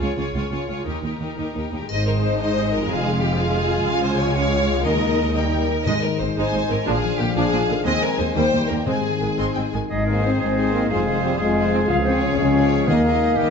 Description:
cinematic, heroic adventure film score; 120 BPM (dotted quarters); 6/8; straight; Ab major; A4 = 443 Hz
clear symphonic violin section; melody; 0.0-13.5 s; Bb4 to C6; -31 LUFS; left 4 dB
rich symphonic violin section; second line; 0.0-13.5 s; G4 to F5; -26 LUFS; left 2 dB
warm symphonic viola section; accompaniment; 0.0-13.5 s; D3 to F4; -28 LUFS; right 2 dB
rich studio cello section; bass; 0.0-13.5 s; Db2 to Bb2; -27 LUFS; right 3 dB
rich symphonic double bass section; bass; 0.0-13.5 s; F1 to Eb2; -26 LUFS; right 3 dB
dark French horn section; sustained chords; 1.9-13.5 s; F3 to F4; -24 LUFS; left 4 dB
concert harp; arpeggios; 1.9-13.5 s; F2 to Bb4; -28 LUFS; left 7 dB
triangle; percussion; 1.9-2.5, 5.9-6.5 s; -40 LUFS; left 6 dB
timpani; percussion; 5.9-6.3, 8.9-9.3, 12.9-13.3 s; Ab2 to Eb3; -30 LUFS; equal
clear oboe; second line; 9.9-13.5 s; G4 to Ab4; -28 LUFS; right 2 dB
hollow concert flute; second line; 9.9-13.5 s; Eb5 to F5; -31 LUFS; equal
warm clarinet; second line; 9.9-13.5 s; G4 to F5; -29 LUFS; left 1 dB
bright trombone section; sustained chords; 10.2-13.5 s; Eb3 to C4; -29 LUFS; right 5 dB
moderate scoring stage reverb, RT60 2.0 s; nothing above 7.8 kHz; -18 LUFS; side -6 dB against mid
0.0-1.9 A section; 1.9-9.9 B section; 9.9-13.5 B section
build-up 0.0-1.9
0.0 Db; 0.9 Eb; 1.9 Ab; 2.9 Fm; 3.9 Db; 4.9 Ebsus4; 5.4 Eb; 5.9 Ab; 6.9 Bb; 7.8 Ab/Eb; 8.3 Eb; 8.9 Ab; 10.9 Fm; 11.9 Db; 12.9 Ebsus4

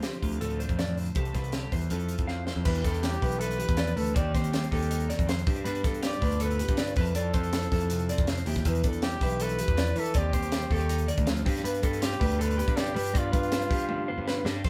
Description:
math rock and midwest emo; 160 BPM; 4/4; straight; A4 = 440 Hz
twelve-string electric guitar; accompaniment; 0.0-14.7 s; F2 to A4; -38 LUFS; equal; spring reverb
electric guitar through a small old amp; arpeggios; 0.0-14.7 s; G4 to F5; -37 LUFS; equal
crisp fusion drum kit; drums; 0.0-14.7 s; crash cymbal, hi-hat, kick drum, snare drum, toms; -32 LUFS; equal
growling picked electric bass; bass; 0.2-14.7 s; B1 to G3; -33 LUFS; equal; overdrive
mellow trumpet; melody; 3.0-14.5 s; F4 to D5; -36 LUFS; equal
light reverb; band playing live in one room; -28 LUFS; mono
0.0-2.7 A section; 2.7-14.6 B section
drum fill 2.3-2.7, 13.9-14.6
0.0 Dm7; 1.2 C69; 1.9 Fmaj7; 2.7 Em7; 4.2 Cm6/Eb; 5.5 G7; 7.0 Fmaj7; 8.7 Em7; 10.2 Cm6/Eb; 11.5 G7

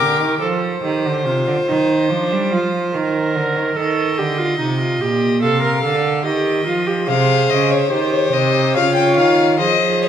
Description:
classical, baroque-style fugue for string quartet; 72 BPM; 4/4; straight; Ab major from 7.1 s; A4 = 444 Hz
dark violin; melody; 0.0-0.4, 7.1-10.1 s; C5 to D6; -18 LUFS; left 9 dB
rich violin; second line; 0.0-10.1 s; G4 to F5; -21 LUFS; left 1 dB
warm viola; accompaniment; 0.0-10.1 s; D4 to Bb4; -20 LUFS; right 2 dB
rich cello; bass; 0.0-10.1 s; Bb2 to G3; -20 LUFS; right 3 dB
wet recital hall reverb, RT60 1.6 s; minimal, uncompressed stereo recording; -15 LUFS; side -9 dB against mid
0.4-10.1 A section
0.4 F; 2.1 Bb/F; 3.8 Eb; 5.4 Adim/C; 7.1 Ab/C; 8.7 Db

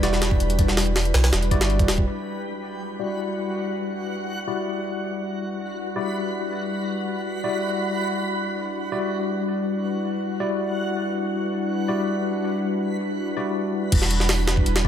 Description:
drum and bass, jungle; 162 BPM; 4/4; straight; E minor; A4 = 442 Hz
warbly tape-like pad; sustained chords; 0.0-14.9 s; G3 to B4; -29 LUFS; left 1 dB; chorus, built-in reverb
tine electric piano; stabs; 0.0-14.9 s; G3 to D5; -27 LUFS; left 2 dB; medium stereo tremolo, low-pass filter, dub echo
soft dub sub bass; bass; 0.0-2.1, 13.9-14.9 s; D1 to B1; -22 LUFS; equal
jungle sampler-style drum kit; drums; 0.0-2.1, 13.9-14.9 s; crash cymbal, hi-hat, kick drum, snare drum; -21 LUFS; equal; small room ambience
backwards swelling texture; texture; 0.0-14.9 s; G3 to B5; -31 LUFS; right 1 dB; built-in reverb
light reverb; faint mains hum; -22 LUFS; side -9 dB against mid
0.0-2.1 A section; 2.1-13.9 B section
filter sweep on tine electric piano 2.1-13.9
0.0 Em9

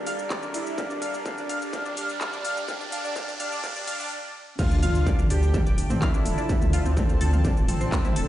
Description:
melodic techno; 126 BPM; 4/4; straight; D minor; A4 = 440 Hz
analog synth brass; melody; 0.0-8.3 s; C4 to G4; -34 LUFS; equal; chorus, sidechain pumping, dub echo
airy dreamy lead; second line; 0.0-8.3 s; C5 to G5; -38 LUFS; equal; chorus, sidechain pumping, dub echo
dark chamber string section; sustained chords; 0.0-8.3 s; F3 to A5; -38 LUFS; left 2 dB; sidechain pumping
brassy analog pad; stabs; 0.0-8.3 s; D3 to G4; -36 LUFS; right 2 dB; chorus, cassette tape, sidechain pumping, dub echo
riser and impact; sound effects; 0.0-6.5 s; -35 LUFS; equal
tight sequenced synth; arpeggios; 0.1-8.3 s; A3 to F5; -34 LUFS; equal; chorus, phaser, sidechain pumping, dub echo
techno drum kit; drums; 0.1-8.3 s; crash cymbal, handclaps, hi-hat, shaker, toms; -33 LUFS; equal; high-pass filter on toms, high-pass filter on perc, high-pass filter on hats, high-pass filter on snare, high-pass filter on cymbals
electronic kick drum; drums; 0.3-8.0 s; -26 LUFS; equal; distortion
dark detuned saw bass; bass; 4.6-8.2 s; D1 to D2; -24 LUFS; equal; sidechain pumping
light reverb; played on a big sound system in a bare room, stone room reverb, high-pass filter, nothing above 10.5 kHz; -23 LUFS; side -13 dB against mid
0.0-4.6 A section; 4.6-8.3 B section
build-up 0.0-4.6; riser 0.0-4.1; filter sweep on analog polysynth 0.0-4.6; filter sweep on digital synth lead 0.0-4.6; filter sweep on analog synth pad 0.0-4.6; filter sweep 0.0-4.6; stop 4.1-4.6; drop 4.6-8.3; impact 4.6-6.5
0.0 Gm; 4.6 Dm

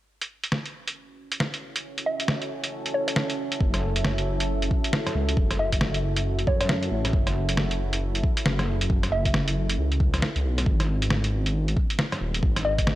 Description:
future garage; 136 BPM; 4/4; swing 61% on 16ths; F# dorian; A4 = 440 Hz
deep dark ambient pad; sustained chords; 1.2-13.0 s; G#3 to E5; -33 LUFS; right 1 dB; chorus, built-in reverb, sidechain pumping
lo-fi sampler-style drum kit; drums; 0.2-13.0 s; hi-hat, rim click, snare drum; -27 LUFS; equal; overdrive
hollow square pluck; melody; 2.1-9.4, 12.6-12.9 s; C#5 to E5; -29 LUFS; equal; chorus, cassette tape, analog delay
dark detuned saw bass; bass; 3.6-13.0 s; D#1 to F#2; -26 LUFS; equal; sidechain pumping
electronic kick drum; drums; 3.6-12.9 s; -24 LUFS; equal
light reverb; dry, gritty hardware recording, cassette tape, faint mains hum; -23 LUFS; side -15 dB against mid
0.1-3.6 A section; 3.6-13.0 B section
fade-in on ambient pad 0.1-3.6
0.1 F#m7; 10.7 G#m

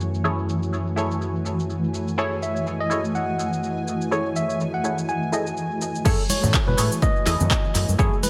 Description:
deep house; 124 BPM; 4/4; swing 57% on 16ths; F# dorian; A4 = 440 Hz
airy breathy pad; sustained chords; 0.0-8.3 s; A3 to G#5; -35 LUFS; equal; chorus, sidechain pumping
filtered dub chord stab; stabs; 0.0-8.2 s; E4 to D#5; -32 LUFS; equal; phaser, sidechain pumping, tape echo
growling fingered electric bass; bass; 0.0-8.1 s; E2 to B2; -30 LUFS; equal; overdrive, sidechain pumping, low-pass filter
punchy analog drum machine; drums; 0.0-8.3 s; cabasa, crash cymbal, handclaps, hi-hat; -30 LUFS; equal; low-pass filter on hats, low-pass filter on snare, low-pass filter on perc, low-pass filter on cymbals, low-pass filter on room, tape echo
granular cloud pad; texture; 0.0-8.3 s; E3 to G#5; -31 LUFS; equal; built-in reverb, sidechain pumping
bright tine electric piano; melody; 2.2-8.3 s; G#4 to G#5; -30 LUFS; equal; analog delay
electronic kick drum; drums; 6.1-8.1 s; -24 LUFS; equal
congas; percussion; 6.3-8.3 s; -31 LUFS; equal; sidechain pumping on perc, tape echo
moderate plate reverb, RT60 2.0 s; echo-heavy mix; -23 LUFS; mono
0.0-6.1 A section; 6.1-8.3 B section
drop 6.1-8.3
0.0 F#m9

